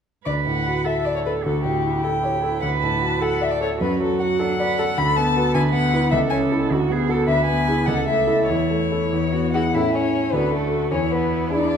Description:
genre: quick classical-period movement for piano quartet.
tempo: 102 BPM (dotted quarters).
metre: 6/8.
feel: rubato.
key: D major, A major from 5.0 s.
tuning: A4 = 438 Hz.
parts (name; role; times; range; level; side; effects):
rich violin; melody; 0.3-11.8 s; G4 to B5; -24 LUFS; left 4 dB; none.
rich cello; second line; 0.3-11.8 s; D4 to B4; -26 LUFS; right 7 dB; none.
bright concert grand piano; accompaniment; 0.3-11.8 s; C#2 to D5; -21 LUFS; equal; none.
rich violin; second line; 9.5-11.8 s; A3 to F#4; -26 LUFS; left 4 dB; none.
room: moderate scoring stage reverb, RT60 1.6 s.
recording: minimal, uncompressed stereo recording.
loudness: -18 LUFS.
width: side -7 dB against mid.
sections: 0.3-9.7 A section; 9.7-11.8 B section.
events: none.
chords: 0.3 D; 1.4 A7/D; 2.6 D; 3.8 D/F#; 5.0 Bm7/D; 5.6 E5/D; 6.1 A/C#; 6.7 Bm7/D; 7.3 E7/D; 7.9 A/C#; 8.5 A/E; 9.1 E; 9.7 A; 10.3 D; 10.9 E7.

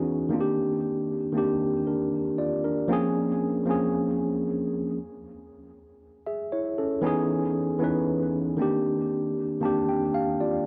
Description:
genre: R&B.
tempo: 58 BPM.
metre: 4/4.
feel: straight.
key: unclear.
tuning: A4 = 439 Hz.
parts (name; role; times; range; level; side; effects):
mellow tine electric piano; solo; 0.0-10.7 s; Eb3 to A5; -27 LUFS; equal; tape echo.
room: light reverb.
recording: dry, gritty hardware recording.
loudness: -27 LUFS.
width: mono.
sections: 0.0-10.7 A section.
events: tine electric piano fill 9.1-10.7.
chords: 0.3 Cm9; 2.9 Bbm9; 5.0 N.C.; 7.0 Dbm9; 8.6 Cm9.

